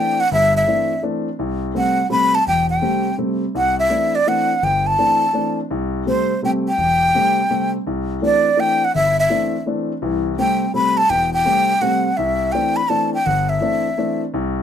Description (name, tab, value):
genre	jazz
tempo	167 BPM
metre	3/4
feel	swing 66% on 8ths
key	C lydian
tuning	A4 = 440 Hz
part	breathy jazz flute	melody	0.0-14.2 s	C5 to B5	-17 LUFS	equal	none
part	warm concert grand piano	accompaniment	0.0-14.6 s	E1 to D4	-21 LUFS	left 1 dB	none
room	light reverb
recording	close, detailed microphones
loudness	-16 LUFS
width	side -8 dB against mid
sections	0.0-14.6 A section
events	none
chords	0.0 C69; 1.4 Am7/C; 3.5 C69; 5.7 Am7/C; 7.9 C69; 10.0 Am7/C; 12.2 C69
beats	| 0.30 0.66 1.02 | 1.39 1.75 2.11 | 2.47 2.83 3.19 | 3.55 3.90 4.26 | 4.62 4.99 5.34 | 5.70 6.06 6.42 | 6.78 7.14 7.50 | 7.86 8.22 8.58 | 8.94 9.30 9.66 | 10.02 10.38 10.74 | 11.10 11.46 11.82 | 12.18 12.54 12.90 | 13.26 13.62 13.98 | 14.35